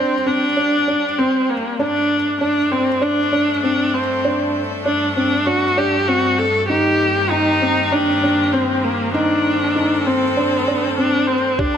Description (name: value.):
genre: piano and strings electronica.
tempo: 98 BPM.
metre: 4/4.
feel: straight.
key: unclear.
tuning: A4 = 440 Hz.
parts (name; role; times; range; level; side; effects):
warm viola; melody; 0.0-11.8 s; Bb3 to A4; -18 LUFS; equal; ping-pong delay.
clear string quartet; sustained chords; 0.0-11.8 s; G2 to D5; -25 LUFS; equal; sidechain pumping.
felt-muted upright piano; riff; 0.0-11.8 s; C4 to Eb4; -20 LUFS; equal; ping-pong delay.
warbly dusty pluck; arpeggios; 11.6-11.8 s; G4; -27 LUFS; left 2 dB; chorus, sidechain pumping.
electronic kick drum; drums; 11.6-11.7 s; none; -21 LUFS; equal; none.
room: moderate lush hall reverb, RT60 2.7 s.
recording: none.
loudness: -15 LUFS.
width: side -8 dB against mid.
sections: 0.0-11.6 A section.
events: fade-in on string quartet 0.0-11.6.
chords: 0.0 Gsus2; 6.7 Cm7/G.